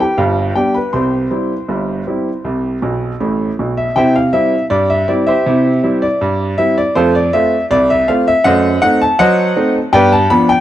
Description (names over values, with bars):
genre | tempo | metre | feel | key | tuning
ragtime piano | 80 BPM | 2/4 | straight | C major | A4 = 436 Hz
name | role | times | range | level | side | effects
bright grand piano | solo | 0.0-10.6 s | G1 to C6 | -12 LUFS | equal | tape echo
room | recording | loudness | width
small room ambience | dry, close 1970s-style studio recording | -12 LUFS | side -12 dB against mid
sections
0.0-4.0 A section; 4.0-10.6 B section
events
grand piano fill 2.8-4.0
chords
0.2 G7; 0.9 C; 7.0 F; 8.4 F#dim7; 9.9 G7